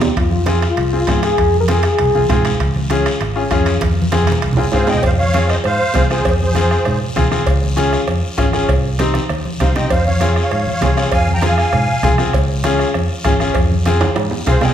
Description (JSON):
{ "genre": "latin, cumbia", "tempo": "197 BPM", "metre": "4/4", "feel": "straight", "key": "F minor", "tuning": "A4 = 438 Hz", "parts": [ { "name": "dark trombone", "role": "second line", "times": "0.0-2.4 s", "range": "F4 to Bb4", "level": "-18 LUFS", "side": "left 2 dB", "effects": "none" }, { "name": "bright upright piano", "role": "accompaniment", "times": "0.0-14.7 s", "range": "C4 to Ab4", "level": "-20 LUFS", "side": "left 2 dB", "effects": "none" }, { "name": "fingered electric bass", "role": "bass", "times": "0.0-14.7 s", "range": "Ab1 to Ab2", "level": "-18 LUFS", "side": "equal", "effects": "none" }, { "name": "bombo", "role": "percussion", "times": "0.0-14.7 s", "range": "none", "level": "-21 LUFS", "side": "equal", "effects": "none" }, { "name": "guiro", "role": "percussion", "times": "0.0-14.7 s", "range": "none", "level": "-29 LUFS", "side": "left 2 dB", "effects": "none" }, { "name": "timbales and cowbell", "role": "percussion", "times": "0.0-14.7 s", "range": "none", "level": "-25 LUFS", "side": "right 4 dB", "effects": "none" }, { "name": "congas", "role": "percussion", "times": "0.2-14.7 s", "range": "none", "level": "-24 LUFS", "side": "right 1 dB", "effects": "none" }, { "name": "musette accordion", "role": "melody", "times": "4.7-7.0, 9.6-12.2, 14.5-14.7 s", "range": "Ab4 to Bb5", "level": "-19 LUFS", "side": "equal", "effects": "none" } ], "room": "wet large studio reverb, RT60 1.3 s", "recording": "band playing live in one room", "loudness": "-13 LUFS", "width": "side -10 dB against mid", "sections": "0.0-5.0 A section; 5.0-14.7 B section", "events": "drum fill 0.0, 3.8-5.0, 9.1-9.9, 13.9-14.7; trombone solo 0.0-5.0", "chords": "0.2 Fm; 2.6 Db; 3.8 Fm; 7.5 Db; 8.7 Cm; 9.9 Fm; 12.3 Db; 13.6 Fm" }